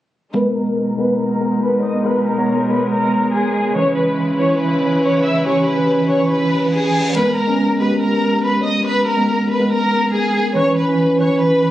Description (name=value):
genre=hip hop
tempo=141 BPM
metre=4/4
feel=half-time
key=G# minor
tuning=A4 = 440 Hz
part: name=dark studio violin section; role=melody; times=0.3-11.7 s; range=G#4 to E6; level=-19 LUFS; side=equal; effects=low-pass filter
part: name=mellow tine electric piano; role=accompaniment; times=0.3-11.7 s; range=E3 to C#5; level=-17 LUFS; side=equal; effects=medium stereo tremolo, low-pass filter
part: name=warm studio string section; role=sustained chords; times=0.3-7.1 s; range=B2 to B4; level=-24 LUFS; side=equal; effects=low-pass filter
part: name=reverse cymbal and impact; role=sound effects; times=6.5-8.9 s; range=none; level=-30 LUFS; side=left 2 dB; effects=none
room=light reverb, small room ambience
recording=recorded on a phone in the room, club reverb, compression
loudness=-14 LUFS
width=side -14 dB against mid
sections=0.3-7.2 A section; 7.2-11.7 B section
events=filter sweep 0.3-7.2; reverse cymbal 6.5-7.2; impact 7.2-8.9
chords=0.3 G#madd9; 3.8 C#m7; 7.2 G#madd9; 10.6 C#m7